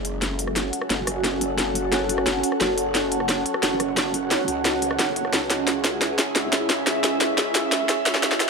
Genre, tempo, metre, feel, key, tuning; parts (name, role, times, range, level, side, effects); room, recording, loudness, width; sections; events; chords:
dark technical drum and bass; 176 BPM; 4/4; straight; F# minor; A4 = 440 Hz
deep dark ambient pad; sustained chords; 0.0-8.5 s; C#4 to A5; -27 LUFS; equal; chorus, built-in reverb
growl bass; bass; 0.0-8.5 s; F#1 to C#2; -31 LUFS; equal; chorus, tube saturation
drum and bass drum kit; drums; 0.0-8.5 s; hi-hat, rim click, snare drum; -23 LUFS; equal; high-pass filter on hats, high-pass filter on toms, high-pass filter on snare
airy breathy pad; texture; 0.1-8.5 s; C#4 to F#5; -26 LUFS; right 2 dB; chorus, phaser
moderate digital room reverb, RT60 1.1 s; high-pass filter; -20 LUFS; side -4 dB against mid
0.0-8.5 A section
build-up 0.0-8.5; drum fill 0.0-8.5
0.0 F#m; 5.3 C#m